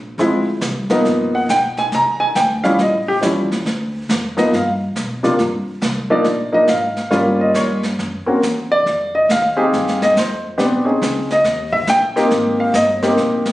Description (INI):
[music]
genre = jazz piano trio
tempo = 138 BPM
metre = 4/4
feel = swing 65% on 8ths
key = C minor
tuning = A4 = 441 Hz
[part]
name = upright bass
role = bass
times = 0.0-13.5 s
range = G1 to B2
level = -27 LUFS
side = equal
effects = none
[part]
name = warm baby grand piano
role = melody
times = 0.2-13.5 s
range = C3 to Bb5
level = -15 LUFS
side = equal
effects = none
[part]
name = jazz brush drum kit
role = drums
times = 0.2-13.5 s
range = brushed snare drum, hi-hat, kick drum, snare drum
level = -24 LUFS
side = right 1 dB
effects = none
[sound]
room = light reverb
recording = recorded on a phone in the room, studio reverb, compression, nothing above 10.4 kHz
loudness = -14 LUFS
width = side -16 dB against mid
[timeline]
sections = 0.0-5.4 A section; 5.4-13.5 B section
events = grand piano solo 5.4-13.5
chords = 0.2 Dm7b5; 1.1 G7alt; 1.9 Csus24; 2.8 A7b13; 3.7 Dm; 4.5 G7; 5.4 Cm11; 7.1 Gm7b5; 8.0 F#7(no3); 8.9 Fm9; 10.6 Bbm11; 11.4 Eb; 12.3 Abmaj9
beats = | 0.18 0.62 1.05 1.48 | 1.92 2.35 2.79 3.22 | 3.65 4.09 4.52 4.95 | 5.39 5.82 6.25 6.69 | 7.12 7.55 7.99 8.42 | 8.85 9.29 9.72 10.15 | 10.58 11.02 11.45 11.88 | 12.31 12.74 13.18